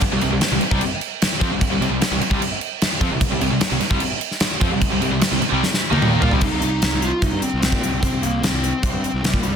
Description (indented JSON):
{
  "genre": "hard rock",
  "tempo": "150 BPM",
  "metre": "4/4",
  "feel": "straight",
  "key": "C minor",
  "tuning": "A4 = 438 Hz",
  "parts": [
    { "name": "gated 80s drum kit", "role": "drums", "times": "0.0-9.5 s", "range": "crash cymbal, hi-hat, kick drum, snare drum, toms", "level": "-20 LUFS", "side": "equal", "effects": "none" },
    { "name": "biting overdriven guitar", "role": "riff", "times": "0.1-6.4 s", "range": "C3 to F4", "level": "-26 LUFS", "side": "right 12 dB", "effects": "none" },
    { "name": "distorted electric guitar", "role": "riff", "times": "0.1-6.4 s", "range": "C3 to F4", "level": "-28 LUFS", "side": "left 1 dB", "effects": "none" },
    { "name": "tight distorted guitar", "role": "riff", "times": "0.1-6.4 s", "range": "C3 to F4", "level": "-26 LUFS", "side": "left 13 dB", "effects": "distortion" },
    { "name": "fuzz picked electric bass", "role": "bass", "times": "0.1-9.6 s", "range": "C2 to Bb2", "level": "-24 LUFS", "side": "equal", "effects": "overdrive" },
    { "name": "lead guitar through a small cranked amp", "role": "melody", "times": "6.0-9.6 s", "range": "G3 to F4", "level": "-24 LUFS", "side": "equal", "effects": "overdrive, tape echo" }
  ],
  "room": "light reverb",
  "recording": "dense, heavily limited modern master",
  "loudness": "-17 LUFS",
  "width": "side -7 dB against mid",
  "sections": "0.0-6.4 A section; 6.4-9.6 B section",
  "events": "drum fill 5.6-6.4",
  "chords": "0.0 Cm"
}